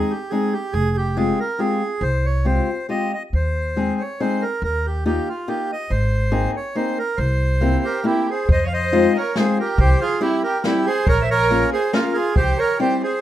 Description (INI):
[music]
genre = musette waltz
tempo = 140 BPM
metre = 3/4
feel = swing 53% on 8ths, rubato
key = Ab major, F harmonic minor from 8.5 s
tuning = A4 = 440 Hz
[part]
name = accordion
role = melody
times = 0.0-13.2 s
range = E4 to F5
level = -22 LUFS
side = right 2 dB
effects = none
[part]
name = fingerpicked steel-string acoustic guitar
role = accompaniment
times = 0.0-13.0 s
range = G3 to Ab4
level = -21 LUFS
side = left 3 dB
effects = none
[part]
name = upright bass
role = bass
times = 0.7-12.5 s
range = F1 to F2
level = -20 LUFS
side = equal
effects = none
[part]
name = warm violin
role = second line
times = 7.9-13.2 s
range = E4 to Db5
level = -26 LUFS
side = right 3 dB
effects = none
[part]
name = jazz brush drum kit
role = drums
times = 8.5-12.9 s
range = hi-hat, kick drum, snare drum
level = -21 LUFS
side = equal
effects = none
[sound]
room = wet studio reverb, RT60 0.6 s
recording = rough home demo mix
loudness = -18 LUFS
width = side -12 dB against mid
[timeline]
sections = 0.0-8.5 A section; 8.5-13.2 B section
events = none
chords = 0.0 Ab; 0.7 Fmadd9; 3.3 Ab/Eb; 4.6 Ebadd9; 5.9 Abadd9; 7.2 C7; 8.5 Fm7; 9.8 C; 11.1 Bbm7; 12.4 C